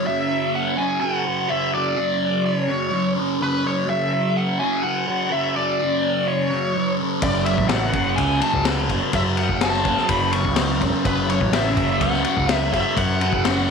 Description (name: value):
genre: psychedelic rock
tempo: 125 BPM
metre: 4/4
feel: straight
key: F# minor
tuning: A4 = 441 Hz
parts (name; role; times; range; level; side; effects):
- dark smooth lead guitar; melody; 0.0-13.7 s; B4 to C#6; -23 LUFS; equal; wah, overdrive, tape echo
- thick fuzz guitar; riff; 0.0-13.7 s; F#2 to F#3; -22 LUFS; right 1 dB; distortion, phaser
- growling picked electric bass; bass; 7.2-13.7 s; E1 to F#2; -24 LUFS; right 1 dB; overdrive
- vintage drum kit; drums; 7.2-13.6 s; kick drum, ride cymbal, snare drum; -24 LUFS; left 5 dB; none
room: moderate echo chamber reverb, RT60 2.1 s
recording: 1960s-style stereo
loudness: -18 LUFS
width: side -5 dB against mid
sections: 0.0-13.7 A section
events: none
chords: 0.0 F#5